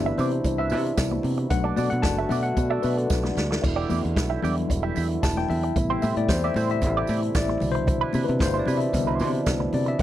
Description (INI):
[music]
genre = disco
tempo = 113 BPM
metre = 4/4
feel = straight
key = unclear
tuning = A4 = 440 Hz
[part]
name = mellow tine electric piano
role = accompaniment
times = 0.0-10.0 s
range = B2 to A5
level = -28 LUFS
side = left 5 dB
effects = medium stereo tremolo
[part]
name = dark French horn section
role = sustained chords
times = 0.0-10.0 s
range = B2 to F#4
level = -29 LUFS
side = right 3 dB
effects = none
[part]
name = fingered electric bass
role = bass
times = 0.0-10.0 s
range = E1 to C3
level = -26 LUFS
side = equal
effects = none
[part]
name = direct-recorded clean electric guitar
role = accompaniment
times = 0.1-10.0 s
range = D4 to E5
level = -30 LUFS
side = right 8 dB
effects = wah
[part]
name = vintage drum kit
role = drums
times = 0.2-10.0 s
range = crash cymbal, hi-hat, kick drum, snare drum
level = -28 LUFS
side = equal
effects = none
[part]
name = congas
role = percussion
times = 0.2-9.9 s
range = none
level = -34 LUFS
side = left 5 dB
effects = none
[part]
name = tambourine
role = percussion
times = 0.2-10.0 s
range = none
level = -43 LUFS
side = right 20 dB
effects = none
[sound]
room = little or no reverb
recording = dry, close 1970s-style studio recording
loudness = -22 LUFS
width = side -12 dB against mid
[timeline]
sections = 0.0-10.0 A section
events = tine electric piano solo 0.0-10.0; drum fill 3.1-3.6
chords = 0.0 Cmaj9; 1.5 Bm7; 3.6 Em7; 5.8 Am7; 7.6 Cmaj9